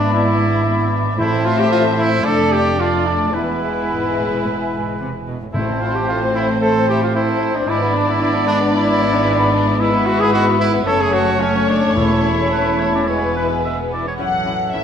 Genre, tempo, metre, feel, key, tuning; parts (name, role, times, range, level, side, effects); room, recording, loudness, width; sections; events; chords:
quick classical-period movement for symphony orchestra; 111 BPM; 4/4; straight; A major from 9.8 s; A4 = 442 Hz
dark symphonic violin section; melody; 0.0-14.8 s; B4 to F#5; -25 LUFS; left 3 dB
clear oboe; second line; 0.0-14.8 s; B4 to E5; -25 LUFS; right 1 dB
dark studio violin section; second line; 0.0-14.8 s; G#3 to F#5; -27 LUFS; left 2 dB
hollow large flute ensemble; second line; 0.0-14.8 s; E5 to B5; -25 LUFS; left 1 dB
warm studio viola section; accompaniment; 0.0-14.8 s; G#3 to E4; -24 LUFS; left 1 dB
clear trumpet; stabs; 0.0-14.8 s; C#4 to A4; -22 LUFS; right 2 dB
dark studio double bass section; bass; 0.0-14.8 s; E1 to A1; -26 LUFS; right 3 dB
warm studio cello section; bass; 0.0-14.8 s; E2 to F#3; -25 LUFS; right 2 dB
dark clarinet; second line; 0.1-14.8 s; C#4 to C#5; -25 LUFS; left 2 dB
mellow French horn section; sustained chords; 0.1-14.8 s; E3 to E4; -24 LUFS; left 3 dB
timpani; percussion; 1.2-2.0, 5.5-6.3, 12.0-12.8 s; E2 to A2; -27 LUFS; equal
wet scoring stage reverb, RT60 1.6 s; -15 LUFS; side -8 dB against mid
0.0-14.2 A section
0.0 E7/G#; 1.2 Am; 2.3 Dm/F; 3.3 E; 5.5 Am; 7.7 E7/G#; 9.8 E/G#; 10.9 F#m; 12.0 A/E; 13.1 E; 14.2 A